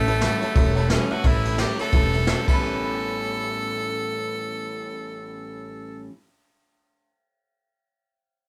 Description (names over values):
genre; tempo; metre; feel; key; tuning
rockabilly; 175 BPM; 4/4; swing 60% on 8ths; A mixolydian; A4 = 440 Hz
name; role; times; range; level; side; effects
edgy tenor saxophone; melody; 0.0-6.1 s; A3 to A4; -30 LUFS; equal; none
picked steel-string acoustic guitar; accompaniment; 0.0-6.2 s; A2 to A4; -35 LUFS; equal; none
electric guitar through a small old amp; riff; 0.0-6.1 s; A2 to B4; -34 LUFS; equal; none
upright bass; bass; 0.0-6.1 s; E1 to A1; -30 LUFS; equal; none
clear upright piano; accompaniment; 0.1-6.1 s; C#5 to A5; -38 LUFS; equal; none
jazz brush drum kit; drums; 0.1-2.5 s; crash cymbal, kick drum, ride cymbal, snare drum; -26 LUFS; equal; none
room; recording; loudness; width
moderate studio ambience, RT60 0.5 s; band playing live in one room; -23 LUFS; mono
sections
0.0-1.2 A section; 1.2-2.6 B section; 2.6-5.4 C section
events
drum fill 2.5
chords
0.0 A7; 2.5 A9